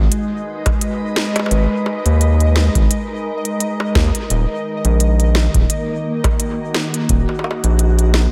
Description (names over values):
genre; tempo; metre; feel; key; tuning
IDM; 86 BPM; 4/4; swing 56% on 16ths; G# minor; A4 = 440 Hz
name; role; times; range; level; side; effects
glassy FM pad; sustained chords; 0.0-8.3 s; D#3 to B4; -24 LUFS; equal; ensemble chorus, built-in reverb
round analog bass; bass; 0.0-8.3 s; D#1 to D#2; -16 LUFS; equal; none
pulsing gated texture; texture; 0.0-8.3 s; D#5; -31 LUFS; equal; chorus, built-in reverb
organic electronic drum kit; drums; 0.1-8.3 s; bongos, hi-hat, snare drum; -25 LUFS; equal; diffuse ambient delay
electronic kick drum; drums; 0.7-7.2 s; none; -20 LUFS; equal; none
room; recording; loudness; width
light reverb; none; -17 LUFS; mono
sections
0.0-8.3 A section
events
none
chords
0.0 G#m7; 4.3 D#m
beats
0.12 0.81 | 1.51 2.21 2.91 3.60 | 4.30 5.00 5.70 6.39 | 7.09 7.79